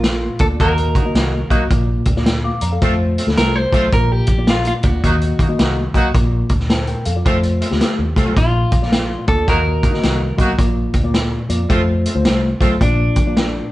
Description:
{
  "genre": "uptempo 1960s-style soul",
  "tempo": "108 BPM",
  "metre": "4/4",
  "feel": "swing 64% on 8ths",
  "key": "Bb major",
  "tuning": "A4 = 440 Hz",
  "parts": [
    { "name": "clean electric guitar", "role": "melody", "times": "0.0-13.7 s", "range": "D4 to C5", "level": "-21 LUFS", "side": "equal", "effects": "none" },
    { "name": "mellow reed electric piano", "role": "accompaniment", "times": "0.0-13.7 s", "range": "Bb2 to D6", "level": "-20 LUFS", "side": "left 2 dB", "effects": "fast tremolo" },
    { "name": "vintage muted fingered electric bass", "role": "bass", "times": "0.0-13.6 s", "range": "Bb1 to Eb3", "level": "-20 LUFS", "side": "equal", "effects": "none" },
    { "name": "vintage drum kit", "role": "drums", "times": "0.0-13.5 s", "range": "hi-hat, kick drum, snare drum", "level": "-18 LUFS", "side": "equal", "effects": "none" },
    { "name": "clear horn section", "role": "second line", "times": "0.6-12.7 s", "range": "F3 to Gb4", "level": "-24 LUFS", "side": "right 2 dB", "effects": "none" }
  ],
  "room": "wet studio reverb, RT60 0.8 s",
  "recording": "band playing live in one room, cassette tape, nothing above 10.3 kHz",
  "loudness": "-14 LUFS",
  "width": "side -16 dB against mid",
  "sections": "0.0-13.7 A section",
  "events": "none",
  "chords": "0.0 Bb; 0.6 Ebm; 1.7 Bb; 2.8 F; 3.9 Bb; 5.0 Ebm; 6.1 Bb; 7.3 F; 8.4 Bb; 9.5 Ebm; 10.6 Bb; 11.7 F; 12.8 Bb"
}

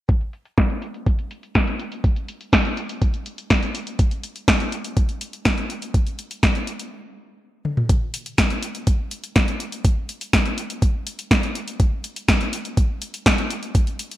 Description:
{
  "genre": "italo disco",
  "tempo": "123 BPM",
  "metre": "4/4",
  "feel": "straight",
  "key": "none",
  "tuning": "none",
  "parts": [
    { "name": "electronic kick drum", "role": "drums", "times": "0.1-13.8 s", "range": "none", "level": "-19 LUFS", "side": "equal", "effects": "overdrive, studio reverb" },
    { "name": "house drum kit", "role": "drums", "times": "0.1-14.2 s", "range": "hi-hat, snare drum, toms", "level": "-22 LUFS", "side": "equal", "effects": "low-pass filter on hats, studio reverb, low-pass filter on snare, low-pass filter on toms, gated reverb" }
  ],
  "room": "light reverb",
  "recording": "bright 1980s-style digital production",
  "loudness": "-20 LUFS",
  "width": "side -15 dB against mid",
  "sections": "0.1-7.9 A section; 7.9-14.2 B section",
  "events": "stop 6.9-7.9; drum fill 7.7",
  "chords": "none"
}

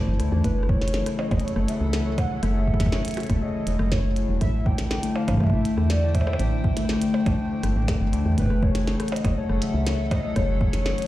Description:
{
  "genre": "IDM",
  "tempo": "121 BPM",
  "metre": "4/4",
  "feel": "straight",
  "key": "unclear",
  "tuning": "A4 = 437 Hz",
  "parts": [
    { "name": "warbly nostalgic lead", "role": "melody", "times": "0.0-11.1 s", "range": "B4 to G5", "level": "-33 LUFS", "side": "equal", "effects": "tremolo, lush chorus, tape echo" },
    { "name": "warbly tape-like pad", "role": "sustained chords", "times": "0.0-11.1 s", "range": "F#3 to G5", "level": "-32 LUFS", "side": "left 1 dB", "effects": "chorus, built-in reverb, phaser, vintage 12-bit sampler grit" },
    { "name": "Celtic harp", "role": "arpeggios", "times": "0.0-11.1 s", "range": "C#3 to D4", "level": "-27 LUFS", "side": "left 3 dB", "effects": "tape echo" },
    { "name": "woody FM bass", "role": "bass", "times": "0.0-10.9 s", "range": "E1 to E2", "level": "-24 LUFS", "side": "equal", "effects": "none" },
    { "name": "glitchy drum kit", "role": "drums", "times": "0.2-11.1 s", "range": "hi-hat, percussion blips, rim click, snare drum", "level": "-33 LUFS", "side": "right 1 dB", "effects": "none" },
    { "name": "electronic kick drum", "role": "drums", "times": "0.4-10.7 s", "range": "none", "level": "-24 LUFS", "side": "equal", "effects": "none" }
  ],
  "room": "little or no reverb",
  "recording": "played on a big sound system in a bare room, large studio reverb",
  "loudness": "-21 LUFS",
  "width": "side -15 dB against mid",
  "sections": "0.0-11.1 A section",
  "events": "none",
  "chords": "0.4 F#m7; 4.4 Am7; 8.4 F#m7"
}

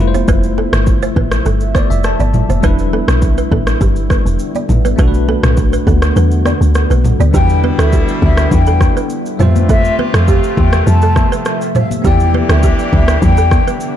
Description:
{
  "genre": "afrobeats",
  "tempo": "102 BPM",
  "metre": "4/4",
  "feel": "straight",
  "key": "E minor",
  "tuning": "A4 = 439 Hz",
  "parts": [
    { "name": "bell-like tine electric piano", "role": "accompaniment", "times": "0.0-14.0 s", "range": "G3 to A5", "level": "-21 LUFS", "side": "left 1 dB", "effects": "medium stereo tremolo" },
    { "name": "deep dark ambient pad", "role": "sustained chords", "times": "0.0-14.0 s", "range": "C3 to E5", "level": "-23 LUFS", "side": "equal", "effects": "chorus, built-in reverb, sidechain pumping" },
    { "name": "deep log drum bass", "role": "bass", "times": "0.0-13.6 s", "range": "E1 to F2", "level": "-13 LUFS", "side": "equal", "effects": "none" },
    { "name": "balafon", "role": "riff", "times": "0.1-13.8 s", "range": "G4 to D5", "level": "-23 LUFS", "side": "right 8 dB", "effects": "digital delay" },
    { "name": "afro-pop drum kit", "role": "drums", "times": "0.1-13.9 s", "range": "kick drum, rim click, shaker, toms", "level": "-15 LUFS", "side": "equal", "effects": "none" },
    { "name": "congas", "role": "percussion", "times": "0.1-13.7 s", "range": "none", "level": "-24 LUFS", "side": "left 7 dB", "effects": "none" },
    { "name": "breathy mellow jazz flute", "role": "melody", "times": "7.3-13.6 s", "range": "E5 to A5", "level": "-20 LUFS", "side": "left 4 dB", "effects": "digital delay" },
    { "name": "warm horn section", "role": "second line", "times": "7.3-14.0 s", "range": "B2 to G4", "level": "-23 LUFS", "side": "left 3 dB", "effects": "none" }
  ],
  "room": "studio reverb",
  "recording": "dark, warm production",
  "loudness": "-10 LUFS",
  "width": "side -10 dB against mid",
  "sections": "0.0-7.3 A section; 7.3-14.0 B section",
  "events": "tine electric piano fill 1.5-2.6; kick muted 6.2-7.3",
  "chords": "0.0 Fmaj7; 2.6 Em7; 5.0 Bm7; 7.3 Em7; 9.4 Fmaj7; 12.0 Em7"
}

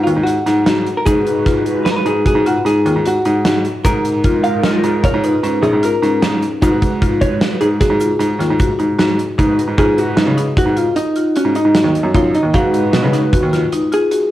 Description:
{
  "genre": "progressive instrumental, band music in an uneven meter",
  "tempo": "152 BPM",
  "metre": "7/4",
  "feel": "straight",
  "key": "G# dorian",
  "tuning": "A4 = 441 Hz",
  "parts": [
    { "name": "vintage hollow-body jazz guitar", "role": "melody", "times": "0.0-14.3 s", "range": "C#4 to E#5", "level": "-18 LUFS", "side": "equal", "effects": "cassette tape, plate reverb, tape echo" },
    { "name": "bright baby grand piano", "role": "bass", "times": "0.0-13.6 s", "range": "A#1 to C#3", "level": "-18 LUFS", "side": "right 1 dB", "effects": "none" },
    { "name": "marimba with hard mallets", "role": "arpeggios", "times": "0.1-14.2 s", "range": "C#4 to E#5", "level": "-19 LUFS", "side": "left 3 dB", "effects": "cassette tape" },
    { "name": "big rock drum kit", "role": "drums", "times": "0.1-14.2 s", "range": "hi-hat, kick drum, snare drum", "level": "-18 LUFS", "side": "equal", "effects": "cassette tape" },
    { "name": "airy breathy pad", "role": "accompaniment", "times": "1.1-13.1 s", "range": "G#3 to A#4", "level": "-23 LUFS", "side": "right 1 dB", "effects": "chorus, phaser, cassette tape, plate reverb" },
    { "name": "egg shaker", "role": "percussion", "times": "1.1-8.7 s", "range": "none", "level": "-37 LUFS", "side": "right 5 dB", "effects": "none" }
  ],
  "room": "moderate small room reverb, RT60 0.5 s",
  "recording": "home recording on cassette",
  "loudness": "-12 LUFS",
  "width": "side -14 dB against mid",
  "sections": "0.0-9.4 A section; 9.4-14.3 B section",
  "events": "hollow-body jazz guitar solo 9.4-14.3",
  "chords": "0.0 G#7(no3); 3.8 D#sus2/G#; 6.6 G#7(no3); 9.4 G#m7"
}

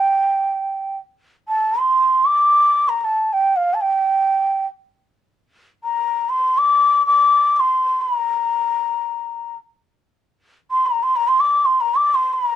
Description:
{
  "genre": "indian classical",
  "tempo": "free time",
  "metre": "none",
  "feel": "none",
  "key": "unclear",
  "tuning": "A4 = 440 Hz",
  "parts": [
    { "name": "breathy mellow bansuri", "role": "solo", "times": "0.0-12.6 s", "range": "F5 to D6", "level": "-15 LUFS", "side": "equal", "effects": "none" }
  ],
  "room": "light reverb",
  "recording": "dark, warm production",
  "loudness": "-15 LUFS",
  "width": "side -11 dB against mid",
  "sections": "0.0-12.6 A section",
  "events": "none",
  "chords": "none"
}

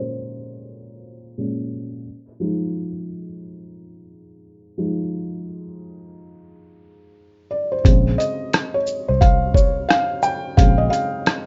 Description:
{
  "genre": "lo-fi hip hop",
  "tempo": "88 BPM",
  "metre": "4/4",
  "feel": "swing 63% on 16ths",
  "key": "Bb dorian",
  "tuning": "A4 = 441 Hz",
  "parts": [
    { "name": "felt-muted upright piano", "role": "accompaniment", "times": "0.0-11.5 s", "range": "Bb2 to G5", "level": "-25 LUFS", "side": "equal", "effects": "cassette tape, plate reverb" },
    { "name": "lo-fi sampler-style drum kit", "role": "drums", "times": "7.8-11.5 s", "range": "hi-hat, kick drum, rim click, shaker", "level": "-18 LUFS", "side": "equal", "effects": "vintage 12-bit sampler grit" },
    { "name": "vintage muted fingered electric bass", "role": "bass", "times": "7.9-10.9 s", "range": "Bb1 to C2", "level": "-23 LUFS", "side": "equal", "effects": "none" }
  ],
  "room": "moderate studio reverb, RT60 0.6 s",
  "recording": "rough home demo mix, low-pass filter, nothing above 7.6 kHz",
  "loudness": "-20 LUFS",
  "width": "mono",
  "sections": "0.0-7.8 A section; 7.8-11.5 B section",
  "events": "felt piano solo 0.0-7.8, 7.8-11.5; filter sweep 0.0-7.8",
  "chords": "0.0 Bbm9; 2.1 Fm7; 7.8 Bbm9"
}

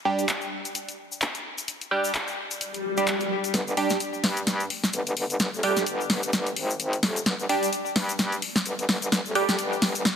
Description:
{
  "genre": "bass house",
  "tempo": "129 BPM",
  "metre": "4/4",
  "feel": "swing 57% on 16ths",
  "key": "unclear",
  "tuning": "A4 = 440 Hz",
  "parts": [
    { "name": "band-passed chord stab", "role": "stabs", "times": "0.1-9.6 s", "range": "G3 to G4", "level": "-27 LUFS", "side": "right 2 dB", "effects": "phaser, ping-pong delay" },
    { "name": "house drum kit", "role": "drums", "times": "0.2-10.2 s", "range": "handclaps, hi-hat, snare drum", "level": "-26 LUFS", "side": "left 1 dB", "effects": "studio ambience" },
    { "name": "tube shaker", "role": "percussion", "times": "0.2-10.2 s", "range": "none", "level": "-35 LUFS", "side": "left 4 dB", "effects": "none" },
    { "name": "swell", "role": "sound effects", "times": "2.7-3.5 s", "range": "none", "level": "-30 LUFS", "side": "left 2 dB", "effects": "none" },
    { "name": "metallic wobble bass", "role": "bass", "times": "3.5-10.0 s", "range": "F1 to G2", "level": "-29 LUFS", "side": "left 1 dB", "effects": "chorus, tube saturation, high-pass filter" }
  ],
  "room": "moderate lush hall reverb, RT60 2.1 s",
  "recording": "heavily compressed radio sound",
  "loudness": "-24 LUFS",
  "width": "side -8 dB against mid",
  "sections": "0.0-3.5 A section; 3.5-10.2 B section",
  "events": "swell 2.7-3.5; build-up 3.5-10.2; drum fill 3.5-10.2",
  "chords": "0.0 G5"
}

